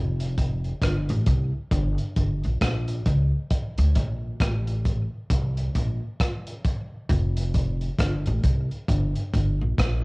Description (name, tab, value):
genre	dub reggae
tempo	67 BPM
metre	4/4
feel	swing 61% on 16ths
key	F major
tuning	A4 = 440 Hz
part	upright bass	bass	0.0-10.0 s	F1 to D2	-24 LUFS	equal	none
part	crunchy breakbeat drum kit	drums	0.2-10.0 s	hi-hat, kick drum, rim click	-26 LUFS	equal	cassette tape
room	little or no reverb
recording	home recording on cassette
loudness	-22 LUFS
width	side -27 dB against mid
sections	0.0-10.0 A section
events	none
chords	none